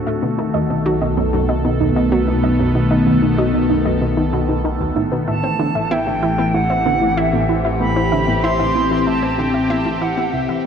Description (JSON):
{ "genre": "ambient, sequencer-driven space music", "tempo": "95 BPM", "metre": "4/4", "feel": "straight", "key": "unclear", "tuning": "A4 = 440 Hz", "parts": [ { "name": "phased analog pad", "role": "sustained chords", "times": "0.0-10.7 s", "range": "D3 to A4", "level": "-19 LUFS", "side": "left 2 dB", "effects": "phaser, chorus" }, { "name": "soft round pluck", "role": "arpeggios", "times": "0.0-10.6 s", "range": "B3 to E5", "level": "-24 LUFS", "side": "right 1 dB", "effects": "chorus, auto-pan, analog delay" }, { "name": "analog drone", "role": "bass", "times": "0.0-10.7 s", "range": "A1 to D2", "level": "-23 LUFS", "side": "equal", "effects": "chorus" }, { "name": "analog pluck", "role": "riff", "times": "0.1-10.6 s", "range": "C2 to E4", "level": "-22 LUFS", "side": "right 1 dB", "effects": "chorus, analog delay" }, { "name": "concert flute", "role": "melody", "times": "5.3-10.7 s", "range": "E5 to C6", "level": "-21 LUFS", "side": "right 2 dB", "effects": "analog delay" } ], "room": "wet lush hall reverb, RT60 2.7 s", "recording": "dreamy mix soaked in reverb, cassette tape", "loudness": "-15 LUFS", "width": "side -7 dB against mid", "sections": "0.0-10.7 A section", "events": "fade-out 8.6-10.7", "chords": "0.2 B7; 5.3 Am7" }